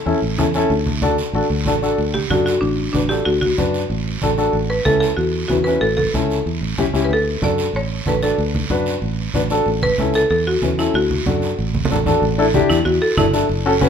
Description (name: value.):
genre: latin, cumbia.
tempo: 188 BPM.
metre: 4/4.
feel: straight.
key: D major.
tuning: A4 = 440 Hz.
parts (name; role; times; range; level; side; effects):
warm upright piano; accompaniment; 0.1-13.9 s; C#4 to B4; -20 LUFS; left 3 dB; none.
fingered electric bass; bass; 0.1-13.9 s; F#1 to F#2; -22 LUFS; right 1 dB; none.
guiro; percussion; 0.1-13.9 s; none; -30 LUFS; right 6 dB; none.
congas; percussion; 0.4-13.9 s; none; -24 LUFS; right 3 dB; none.
buzzing marimba with hard mallets; melody; 2.1-13.3 s; D4 to D5; -19 LUFS; equal; none.
room: moderate large studio reverb, RT60 1.2 s.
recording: minimal, uncompressed stereo recording.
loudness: -16 LUFS.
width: side -7 dB against mid.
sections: 0.0-2.0 A section; 2.0-12.2 B section; 12.2-13.9 C section.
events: drum fill 11.7-12.2; marimba solo 12.2-13.9.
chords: 0.0 A; 0.7 D; 4.5 A; 7.1 D; 9.7 A; 10.9 D; 12.2 Asus4.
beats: 0.06 0.38 | 0.70 1.02 1.34 1.66 | 1.98 2.30 2.62 2.94 | 3.26 3.58 3.90 4.22 | 4.54 4.86 5.18 5.50 | 5.82 6.14 6.46 6.78 | 7.10 7.42 7.74 8.06 | 8.38 8.70 9.02 9.34 | 9.66 9.98 10.30 10.62 | 10.94 11.26 11.58 11.90 | 12.22 12.54 12.86 13.18 | 13.49 13.81.